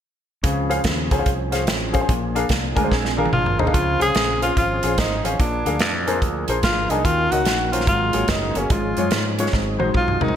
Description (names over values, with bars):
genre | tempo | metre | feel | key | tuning
uptempo gospel | 145 BPM | 4/4 | swing 65% on 8ths | Db major | A4 = 443 Hz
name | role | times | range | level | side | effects
clear grand piano | accompaniment | 0.4-10.3 s | Ab2 to Ab5 | -24 LUFS | left 3 dB | lush chorus
percussive tonewheel organ | sustained chords | 0.4-10.4 s | Eb3 to Ab4 | -30 LUFS | right 3 dB | slow rotary speaker, overdrive, chorus vibrato
modern bright fingered electric bass | bass | 0.4-10.3 s | Gb1 to Ab2 | -26 LUFS | equal | none
natural country drum kit | drums | 0.4-10.4 s | hi-hat, kick drum, snare drum, toms | -23 LUFS | equal | gated reverb
clean electric guitar | second line | 2.8-3.7 s | Ab3 to Bb4 | -29 LUFS | right 8 dB | ensemble chorus, ping-pong delay
breathy tenor saxophone | melody | 3.3-10.4 s | Db4 to Ab4 | -22 LUFS | equal | none
warm French horn section | sustained chords | 3.7-10.4 s | Db3 to Db5 | -35 LUFS | left 1 dB | none
room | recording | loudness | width
light reverb | bright 1980s-style digital production | -18 LUFS | side -9 dB against mid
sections
0.4-3.7 A section; 3.7-10.4 B section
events
drum fill 2.9-3.7, 9.5-10.4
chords
0.4 Dbmaj7; 2.1 Bb7; 3.7 Dbmaj7; 5.4 Bb7; 7.0 Ebm7; 7.9 Ab9sus4; 8.7 Db/Ab; 9.5 Ab7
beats
| 0.43 0.85 1.26 1.67 | 2.09 2.50 2.91 3.33 | 3.74 4.15 4.57 4.98 | 5.39 5.81 6.22 6.63 | 7.05 7.46 7.88 8.29 | 8.70 9.12 9.53 9.95